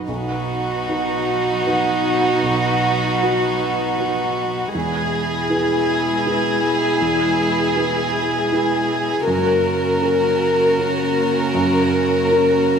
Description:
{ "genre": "neoclassical piano and strings", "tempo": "79 BPM", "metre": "3/4", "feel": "rubato", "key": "B major", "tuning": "A4 = 438 Hz", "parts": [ { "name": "felt-muted upright piano", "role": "accompaniment", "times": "0.0-12.8 s", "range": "B1 to B4", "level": "-25 LUFS", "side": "right 2 dB", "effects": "none" }, { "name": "warm chamber string section", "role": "sustained chords", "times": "0.0-12.8 s", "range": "F#3 to C#5", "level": "-30 LUFS", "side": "equal", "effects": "none" }, { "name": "warm chamber violin section", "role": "melody", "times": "0.1-12.8 s", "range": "F#4 to A#4", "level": "-19 LUFS", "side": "left 1 dB", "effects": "none" }, { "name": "warm cello", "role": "second line", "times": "0.1-12.8 s", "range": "B2 to C#3", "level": "-26 LUFS", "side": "right 6 dB", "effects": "none" }, { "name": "warm viola", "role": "accompaniment", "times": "0.1-12.8 s", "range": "D#4 to F#4", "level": "-25 LUFS", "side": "left 1 dB", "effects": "none" } ], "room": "wet concert hall reverb, RT60 1.8 s", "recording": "recorded in a church or concert hall", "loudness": "-16 LUFS", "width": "side -7 dB against mid", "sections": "0.1-12.8 A section", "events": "none", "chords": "0.1 B; 4.7 E; 9.3 F#", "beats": "| 0.08 0.88 1.66 | 2.44 3.21 3.98 | 4.74 5.50 6.26 | 7.01 7.77 8.53 | 9.27 10.02 10.78 | 11.54 12.29" }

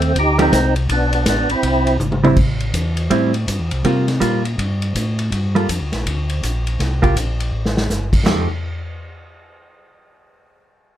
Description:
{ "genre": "soul jazz organ trio", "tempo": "163 BPM", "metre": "4/4", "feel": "swing 63% on 8ths", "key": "unclear", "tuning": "A4 = 439 Hz", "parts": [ { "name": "percussive tonewheel organ", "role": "melody", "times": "0.0-2.0 s", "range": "A3 to G4", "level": "-17 LUFS", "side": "right 1 dB", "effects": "slow rotary speaker, chorus vibrato" }, { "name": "mellow tonewheel organ", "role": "bass", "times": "0.0-8.5 s", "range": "G1 to C3", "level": "-20 LUFS", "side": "equal", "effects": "slow rotary speaker" }, { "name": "vintage drum kit", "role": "drums", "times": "0.0-8.4 s", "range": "crash cymbal, hi-hat, kick drum, ride cymbal, snare drum, splash cymbal, toms", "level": "-21 LUFS", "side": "equal", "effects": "none" }, { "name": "vintage hollow-body jazz guitar", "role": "accompaniment", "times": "0.4-8.5 s", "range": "F3 to A4", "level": "-17 LUFS", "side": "right 3 dB", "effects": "none" } ], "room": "light reverb", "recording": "none", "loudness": "-16 LUFS", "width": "side -12 dB against mid", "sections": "0.0-2.4 A section; 2.4-8.3 B section; 8.3-9.7 C section", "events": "drum fill 2.0-2.4, 7.5-7.9", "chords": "0.0 F9; 0.9 Asus24; 1.6 Eaug; 2.4 Am7; 3.8 C7sus4; 5.3 Gm7; 6.8 C7(no3); 8.3 F9", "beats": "0.15 0.52 | 0.89 1.26 1.63 1.99 | 2.36 2.73 3.10 3.47 | 3.84 4.21 4.58 4.94 | 5.31 5.68 6.05 6.42 | 6.79 7.16 7.53 7.89 | 8.26" }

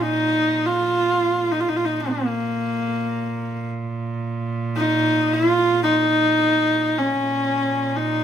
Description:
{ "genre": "mongolian traditional, Mongolian folk", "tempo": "free time", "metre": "none", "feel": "none", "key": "Bb yu mode", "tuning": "A4 = 440 Hz", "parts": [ { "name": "clear horsehead fiddle", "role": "melody", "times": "0.0-8.2 s", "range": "Bb3 to F4", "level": "-19 LUFS", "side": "equal", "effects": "none" }, { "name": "rich cello", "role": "drone", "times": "0.0-8.2 s", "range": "Bb2", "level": "-28 LUFS", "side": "right 4 dB", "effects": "none" } ], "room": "moderate stone room reverb, RT60 1.1 s", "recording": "band playing live in one room", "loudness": "-19 LUFS", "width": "side -9 dB against mid", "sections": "0.0-8.2 A section", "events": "none", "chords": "none", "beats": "free time" }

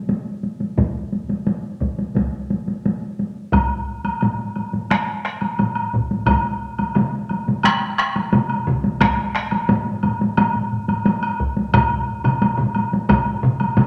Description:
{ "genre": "japanese traditional, taiko drum ensemble", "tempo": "88 BPM", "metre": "4/4", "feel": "straight", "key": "none", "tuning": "none", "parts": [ { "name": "solo taiko drums", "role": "percussion", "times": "0.1-13.9 s", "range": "none", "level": "-24 LUFS", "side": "equal", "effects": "none" }, { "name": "taiko ensemble", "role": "percussion", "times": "0.8-13.3 s", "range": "none", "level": "-27 LUFS", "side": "equal", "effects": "none" }, { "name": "taiko ensemble", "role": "percussion", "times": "3.5-13.9 s", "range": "none", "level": "-28 LUFS", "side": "equal", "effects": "none" }, { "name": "woodblock", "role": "percussion", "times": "3.5-13.9 s", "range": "none", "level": "-26 LUFS", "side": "equal", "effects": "none" }, { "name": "taiko ensemble", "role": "percussion", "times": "6.3-13.9 s", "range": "none", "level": "-24 LUFS", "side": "equal", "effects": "none" } ], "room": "wet large studio reverb, RT60 1.2 s", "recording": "none", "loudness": "-21 LUFS", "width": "mono", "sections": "0.0-3.5 A section; 3.5-13.9 B section", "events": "none", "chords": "none", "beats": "0.09 | 0.78 1.47 2.16 2.85 | 3.53 4.22 4.91 5.59 | 6.28 6.96 7.65 8.33 | 9.01 9.69 10.38 11.06 | 11.74 12.42 13.10 13.77" }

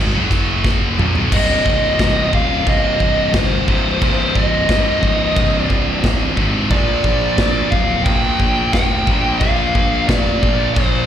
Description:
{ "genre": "heavy metal", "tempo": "89 BPM", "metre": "4/4", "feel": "straight", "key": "C minor", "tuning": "A4 = 440 Hz", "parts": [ { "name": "scooped high-gain guitar", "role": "riff", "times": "0.0-11.1 s", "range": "C2 to Bb3", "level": "-19 LUFS", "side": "equal", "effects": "distortion, slapback echo" }, { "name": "fuzz picked electric bass", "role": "bass", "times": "0.0-11.1 s", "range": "C1 to B1", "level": "-21 LUFS", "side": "equal", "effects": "overdrive" }, { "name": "big rock drum kit", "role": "drums", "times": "0.3-10.9 s", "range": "china cymbal, crash cymbal, kick drum, snare drum, toms", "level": "-18 LUFS", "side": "equal", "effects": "none" }, { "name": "dark smooth lead guitar", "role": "melody", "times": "1.3-11.1 s", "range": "C5 to G5", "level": "-19 LUFS", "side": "equal", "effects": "overdrive, slapback echo, digital delay" } ], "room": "little or no reverb", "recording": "live gig heard through the venue's PA, recital hall reverb", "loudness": "-14 LUFS", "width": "side -10 dB against mid", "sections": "0.0-1.3 A section; 1.3-11.1 B section", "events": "drum fill 0.6-1.3", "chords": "0.1 F#5; 1.0 F#add11/A#; 1.3 Cm; 6.7 Bb", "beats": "0.64 | 1.31 1.99 2.66 3.34 | 4.01 4.69 5.36 6.04 | 6.71 7.39 8.06 8.74 | 9.41 10.09 10.76" }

